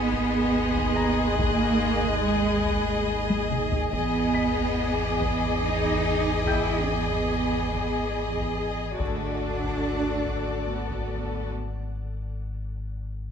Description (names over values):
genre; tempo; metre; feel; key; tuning
cinematic, suspense film score; 71 BPM; 3/4; straight; unclear; A4 = 440 Hz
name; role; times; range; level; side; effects
rich chamber violin section; melody; 0.0-11.5 s; D5 to Eb5; -33 LUFS; left 4 dB; none
rich chamber violin section; second line; 0.0-11.5 s; Ab4 to A4; -32 LUFS; left 4 dB; none
rich studio viola section; accompaniment; 0.0-11.5 s; F#4 to Ab4; -32 LUFS; left 1 dB; none
soft additive organ-like pad; sustained chords; 0.0-11.5 s; Ab4 to B5; -36 LUFS; equal; ensemble chorus, built-in reverb
clear chamber double bass section; bass; 0.0-11.5 s; D2 to E2; -32 LUFS; right 4 dB; none
rich symphonic cello section; bass; 0.0-11.5 s; Ab3 to E4; -28 LUFS; right 4 dB; none
sub bass with octave; drone; 0.0-13.3 s; Ab1; -32 LUFS; left 1 dB; none
felt-muted upright piano; texture; 0.0-9.0 s; G5 to B6; -38 LUFS; left 4 dB; none
warm studio violin section; texture; 0.0-8.5 s; G#5 to Gb6; -37 LUFS; left 5 dB; none
taiko ensemble; drums; 0.1-11.5 s; none; -32 LUFS; left 1 dB; none
room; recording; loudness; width
light reverb; close, detailed microphones; -23 LUFS; side -7 dB against mid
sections
0.0-13.3 A section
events
drum fill 3.3-3.9; break 11.5-13.3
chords
0.0 Abm; 3.9 Emaj7/G#; 9.0 D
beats
0.55 | 1.39 2.24 3.08 | 3.93 4.77 5.62 | 6.46 7.31 8.15 | 9.00 9.85 10.69 | 11.54 12.38 13.22